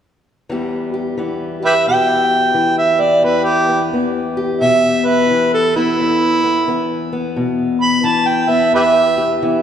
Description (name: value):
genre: acoustic country blues, solo or duo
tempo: 87 BPM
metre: 4/4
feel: swing 64% on 8ths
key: E minor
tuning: A4 = 440 Hz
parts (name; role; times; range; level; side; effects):
- fingerpicked steel-string acoustic guitar; accompaniment; 0.5-9.6 s; E2 to G4; -18 LUFS; left 3 dB; none
- mellow harmonica; melody; 1.7-9.4 s; E4 to B5; -14 LUFS; right 2 dB; none
room: wet church reverb, RT60 3.0 s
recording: recorded in a church or concert hall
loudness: -13 LUFS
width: side -9 dB against mid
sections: 0.5-9.6 A section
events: none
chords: 0.5 Em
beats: | 0.49 1.18 1.86 2.55 | 3.23 3.92 4.61 5.29 | 5.98 6.67 7.35 8.04 | 8.73 9.41